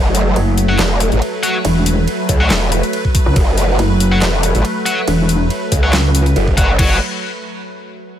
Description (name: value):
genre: heavy wobble dubstep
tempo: 140 BPM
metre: 4/4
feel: swing 54% on 16ths, half-time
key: F# minor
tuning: A4 = 440 Hz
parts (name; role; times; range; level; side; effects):
- evolving wavetable pad; sustained chords; 0.0-7.0 s; F#3 to B4; -20 LUFS; equal; phaser, built-in reverb, sidechain pumping
- growl bass; bass; 0.0-7.0 s; E1 to C#2; -15 LUFS; equal; distortion, chorus, overdrive
- dubstep drum kit; drums; 0.1-6.9 s; crash cymbal, handclaps, hi-hat, ride cymbal, snare drum; -22 LUFS; left 1 dB; overdrive
- pulsing pluck wobble bass; bass; 0.4-6.3 s; E1 to C#2; -13 LUFS; equal; chorus, overdrive
- scooped high-gain guitar; stabs; 0.7-7.0 s; F#4 to F#5; -22 LUFS; left 2 dB; distortion, ping-pong delay
- electronic kick drum; drums; 2.3-6.9 s; none; -15 LUFS; equal; overdrive
room: little or no reverb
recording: none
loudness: -12 LUFS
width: side -10 dB against mid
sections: 0.0-6.8 A section; 6.8-8.2 B section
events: drop 0.0-6.8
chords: 0.0 F#m; 6.8 F#madd9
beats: 0.36 0.79 1.22 | 1.65 2.08 2.50 2.93 | 3.36 3.79 4.22 4.65 | 5.08 5.50 5.93 6.36 | 6.79